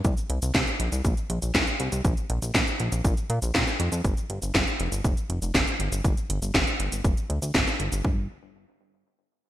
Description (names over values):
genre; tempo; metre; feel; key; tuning
italo disco; 120 BPM; 4/4; straight; G minor; A4 = 439 Hz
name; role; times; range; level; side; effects
chorused synth bass; bass; 0.0-8.3 s; F1 to Bb2; -28 LUFS; equal; none
electronic kick drum; drums; 0.0-8.2 s; none; -26 LUFS; equal; small room reverb
house drum kit; drums; 0.0-8.0 s; cabasa, handclaps, hi-hat, snare drum; -26 LUFS; equal; small room reverb, gated reverb
room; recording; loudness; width
light reverb, digital ambience; bright 1980s-style digital production; -23 LUFS; side -13 dB against mid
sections
0.0-8.0 A section; 8.0-9.5 B section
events
none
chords
none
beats
| 0.05 0.55 1.05 1.55 | 2.05 2.55 3.05 3.55 | 4.05 4.55 5.05 5.55 | 6.05 6.55 7.05 7.55 | 8.05